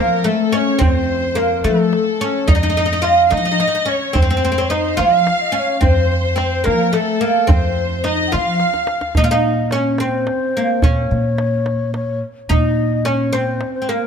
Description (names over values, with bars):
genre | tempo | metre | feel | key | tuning
Persian modal ensemble | 72 BPM (dotted quarters) | 6/8 | straight | F dastgah homayun | A4 = 439 Hz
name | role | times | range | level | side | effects
oud | melody | 0.0-14.1 s | A3 to F4 | -18 LUFS | right 1 dB | none
breathy mellow low ney | second line | 0.0-14.1 s | A4 to Gb5+47c | -23 LUFS | left 5 dB | none
warm symphonic violin section | second line | 0.0-9.2 s | A4 to F5 | -22 LUFS | left 1 dB | none
upright bass | bass | 0.0-13.6 s | F2 to F3 | -20 LUFS | equal | none
tombak | percussion | 0.3-13.7 s | none | -18 LUFS | right 1 dB | none
room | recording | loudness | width
light reverb | close, detailed microphones | -14 LUFS | side -7 dB against mid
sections
0.0-9.2 A section; 9.2-14.1 B section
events
drum fill 8.6-9.2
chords
none